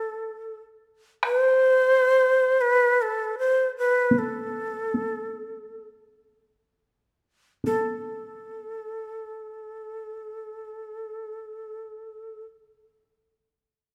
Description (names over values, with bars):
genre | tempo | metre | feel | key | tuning
japanese traditional, Japanese chamber music | 32-49 BPM | 4/4 | rubato | A hirajoshi | A4 = 438 Hz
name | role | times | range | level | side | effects
breathy bright shakuhachi | melody | 0.0-12.4 s | A4 to C5 | -26 LUFS | equal | none
taiko ensemble | percussion | 1.2-8.5 s | none | -30 LUFS | equal | none
room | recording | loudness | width
moderate recital hall reverb, RT60 1.7 s | none | -23 LUFS | mono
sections
0.0-7.6 A section; 7.6-13.9 B section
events
slowing down 0.0-7.6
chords
none